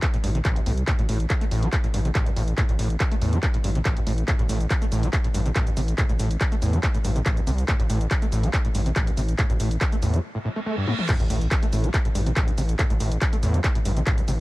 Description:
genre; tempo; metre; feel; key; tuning
driving peak-time techno; 141 BPM; 4/4; straight; A minor; A4 = 439 Hz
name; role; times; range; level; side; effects
electronic kick drum; drums; 0.0-14.2 s; none; -23 LUFS; equal; distortion
punchy analog drum machine; drums; 0.0-14.4 s; crash cymbal, handclaps, hi-hat, shaker, toms; -30 LUFS; equal; none
screaming distorted acid line; riff; 0.1-14.3 s; A1 to A3; -28 LUFS; equal; distortion, lush chorus, sidechain pumping, ping-pong delay
gritty driven synth bass; bass; 0.2-14.4 s; A1 to E2; -24 LUFS; equal; sidechain pumping
reverse cymbal and sub drop; sound effects; 10.4-12.8 s; none; -35 LUFS; right 2 dB; none
room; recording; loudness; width
little or no reverb; none; -21 LUFS; side -19 dB against mid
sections
0.0-11.1 A section; 11.1-14.4 B section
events
break 10.2-11.1; reverse cymbal 10.4-11.1; drum fill 10.9; drop 11.1-14.4; impact 11.1-12.8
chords
0.0 N.C.; 11.1 A5

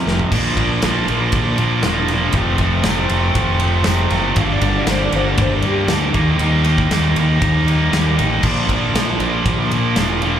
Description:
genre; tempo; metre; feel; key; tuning
classic rock; 118 BPM; 4/4; straight; unclear; A4 = 440 Hz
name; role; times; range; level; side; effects
overdriven electric guitar; riff; 0.0-10.4 s; F2 to Eb4; -22 LUFS; left 11 dB; slapback echo
overdriven electric guitar; riff; 0.0-10.4 s; F2 to Eb4; -19 LUFS; right 7 dB; slapback echo
fuzz fingered electric bass; bass; 0.1-10.4 s; E1 to Bb2; -19 LUFS; equal; overdrive
big rock drum kit; drums; 0.1-10.3 s; crash cymbal, kick drum, ride cymbal, snare drum, toms; -21 LUFS; equal; none
tambourine; percussion; 0.8-10.1 s; none; -34 LUFS; left 5 dB; none
clean lap steel guitar; second line; 4.4-5.9 s; G4 to F5; -24 LUFS; left 2 dB; slapback echo
room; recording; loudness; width
studio ambience; live gig heard through the venue's PA, club reverb; -14 LUFS; side -9 dB against mid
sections
0.3-10.4 A section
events
drum fill 0.0-0.3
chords
0.3 Bb; 2.3 F; 4.4 Gm; 6.2 Eb; 8.4 Bb

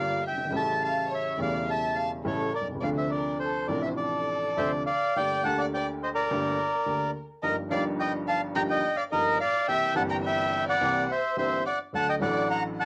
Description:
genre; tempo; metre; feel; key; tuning
tango; 106 BPM; 4/4; rubato; D minor, G harmonic minor from 5.2 s; A4 = 436 Hz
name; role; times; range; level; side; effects
bandoneon; melody; 0.0-12.9 s; Bb4 to Bb5; -29 LUFS; equal; cassette tape
dark studio violin section; second line; 0.0-12.9 s; A4 to G5; -37 LUFS; equal; none
clear upright piano; accompaniment; 0.0-12.9 s; E1 to A4; -34 LUFS; equal; none
room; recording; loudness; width
moderate studio reverb, RT60 0.6 s; home recording on cassette; -28 LUFS; mono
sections
0.0-5.2 A section; 5.2-12.9 B section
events
none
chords
0.0 Gm7; 0.5 A7; 2.8 Dm7; 5.2 Gmadd9; 7.4 Ebadd9/G; 9.7 C7; 11.9 D

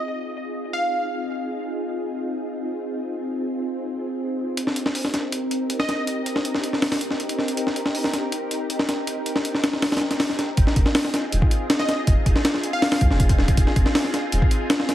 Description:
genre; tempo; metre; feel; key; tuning
drum and bass, jungle; 160 BPM; 4/4; straight; F minor; A4 = 441 Hz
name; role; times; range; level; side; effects
soft string machine; sustained chords; 0.0-14.9 s; C4 to Bb4; -27 LUFS; equal; ensemble chorus
plucky unison lead; melody; 0.7-1.0, 5.8-6.0, 11.8-13.0 s; Eb5 to F5; -29 LUFS; equal; phaser, dub echo
breakbeat sampler-style drum kit; drums; 4.6-14.9 s; hi-hat, kick drum, snare drum; -21 LUFS; equal; none
soft dub sub bass; bass; 10.6-14.4 s; Eb1 to C2; -22 LUFS; equal; none
room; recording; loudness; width
moderate echo chamber reverb, RT60 2.2 s; heavily compressed radio sound; -20 LUFS; side -12 dB against mid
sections
0.0-10.6 A section; 10.6-14.9 B section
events
filter sweep on string machine 0.0-10.6; drop 10.6-14.9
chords
0.0 Fm7; 4.6 Cm7; 10.6 Fm7

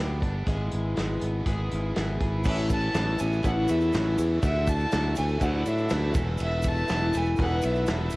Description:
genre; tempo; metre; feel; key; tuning
folk rock and heartland rock; 122 BPM; 4/4; straight; A major; A4 = 440 Hz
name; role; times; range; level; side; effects
picked twelve-string acoustic guitar; accompaniment; 0.0-8.2 s; E2 to G#4; -30 LUFS; left 2 dB; cassette tape
biting overdriven guitar; riff; 0.0-8.2 s; E2 to G#4; -38 LUFS; right 1 dB; spring reverb, cassette tape
modern bright fingered electric bass; bass; 0.0-8.2 s; E1 to A2; -27 LUFS; equal; none
natural country drum kit; drums; 0.2-8.2 s; crash cymbal, hi-hat, kick drum, ride cymbal, snare drum; -30 LUFS; equal; cassette tape
tube shaker; percussion; 2.4-8.2 s; none; -48 LUFS; right 6 dB; none
rich fiddle; melody; 2.5-8.1 s; E5 to A5; -32 LUFS; equal; none
bright upright piano; accompaniment; 2.5-8.2 s; E4 to E5; -43 LUFS; right 3 dB; none
bright tonewheel organ; sustained chords; 2.5-8.2 s; E4 to E5; -41 LUFS; right 1 dB; none
room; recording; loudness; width
studio reverb; home recording on cassette; -23 LUFS; side -22 dB against mid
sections
0.0-2.5 A section; 2.5-8.2 B section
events
none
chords
0.5 E/G#; 2.5 Aadd9; 4.4 Dadd9; 6.2 Esus4

